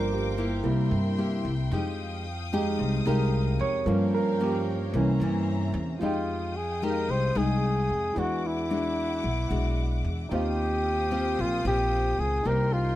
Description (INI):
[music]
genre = bossa nova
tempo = 112 BPM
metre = 4/4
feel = straight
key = F minor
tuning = A4 = 439 Hz
[part]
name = nylon-string guitar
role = accompaniment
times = 0.0-13.0 s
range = G2 to G4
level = -32 LUFS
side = left 3 dB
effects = none
[part]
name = warm grand piano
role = accompaniment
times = 0.0-13.0 s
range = E3 to G5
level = -32 LUFS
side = right 4 dB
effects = none
[part]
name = warm studio string section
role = sustained chords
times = 0.0-13.0 s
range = Bb4 to Eb6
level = -38 LUFS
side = left 3 dB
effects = none
[part]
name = upright bass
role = bass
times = 0.0-13.0 s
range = G1 to G2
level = -28 LUFS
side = left 1 dB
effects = none
[part]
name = warm flugelhorn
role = melody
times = 6.0-13.0 s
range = E4 to C5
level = -28 LUFS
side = equal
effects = none
[sound]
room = little or no reverb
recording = dry, close 1970s-style studio recording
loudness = -24 LUFS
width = side -14 dB against mid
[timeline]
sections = 0.0-6.0 A section; 6.0-13.0 B section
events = grand piano solo 0.0-6.0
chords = 0.0 Gm7; 0.6 C7; 1.7 Fm9; 3.9 Gm7b5; 4.9 C7b9; 6.0 Fm9; 8.2 E9; 10.3 Eb69